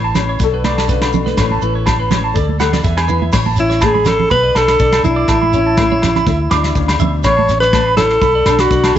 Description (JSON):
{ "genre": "highlife guitar band", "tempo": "123 BPM", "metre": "4/4", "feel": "swing 53% on 16ths", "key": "A major", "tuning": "A4 = 444 Hz", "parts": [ { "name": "fingerpicked swing-style acoustic guitar", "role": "accompaniment", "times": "0.0-9.0 s", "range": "E2 to B4", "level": "-22 LUFS", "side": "left 10 dB", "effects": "none" }, { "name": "clean electric guitar", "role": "arpeggios", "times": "0.0-8.9 s", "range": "B4 to D6", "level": "-21 LUFS", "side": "right 11 dB", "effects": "slapback echo" }, { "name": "vintage muted fingered electric bass", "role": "bass", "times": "0.0-9.0 s", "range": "A1 to E2", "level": "-18 LUFS", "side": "equal", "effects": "none" }, { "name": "soft brush drum kit", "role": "drums", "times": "0.2-8.9 s", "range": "crash cymbal, kick drum, snare drum", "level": "-20 LUFS", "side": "left 1 dB", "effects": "none" }, { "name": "agogo bells", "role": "percussion", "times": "0.2-9.0 s", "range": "none", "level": "-22 LUFS", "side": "left 3 dB", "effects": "none" }, { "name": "congas", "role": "percussion", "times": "0.2-9.0 s", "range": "none", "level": "-21 LUFS", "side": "right 8 dB", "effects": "none" }, { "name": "shekere", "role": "percussion", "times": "0.2-9.0 s", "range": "none", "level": "-24 LUFS", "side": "right 3 dB", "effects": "none" }, { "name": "clear alto saxophone", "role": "melody", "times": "3.6-9.0 s", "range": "E4 to C#5", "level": "-14 LUFS", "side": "equal", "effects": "none" } ], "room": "light reverb, studio reverb", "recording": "1960s-style stereo with parts hard left and right, nothing above 7.9 kHz", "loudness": "-11 LUFS", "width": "side -10 dB against mid", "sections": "0.0-3.3 A section; 3.3-9.0 B section", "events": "none", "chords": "0.4 Bm7; 1.4 Aadd9; 2.4 D; 2.8 E; 3.3 A; 4.3 Bm7; 5.3 Aadd9; 6.3 Dsus2; 7.2 Aadd9; 8.2 Bm7", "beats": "0.40 0.89 | 1.37 1.86 2.35 2.84 | 3.33 3.82 4.31 4.80 | 5.29 5.78 6.27 6.76 | 7.25 7.73 8.22 8.71" }